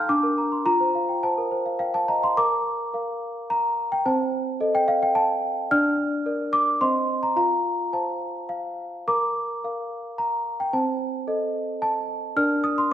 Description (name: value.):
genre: classical, lullaby for celesta.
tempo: 108 BPM.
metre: 3/4.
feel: rubato.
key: Bb major.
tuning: A4 = 440 Hz.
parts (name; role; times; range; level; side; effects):
celesta; solo; 0.0-12.9 s; C4 to G6; -22 LUFS; equal; none.
room: moderate recital hall reverb, RT60 1.6 s.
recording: none.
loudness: -22 LUFS.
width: side -10 dB against mid.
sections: 0.0-2.4 A section; 2.4-12.9 B section.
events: none.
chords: 0.1 Bb/D; 0.7 F; 2.4 Bb; 4.1 Adim/C; 5.7 Bb/D; 6.8 Cm; 7.4 F; 9.1 Bb; 10.7 Adim/C; 12.4 Bb/D.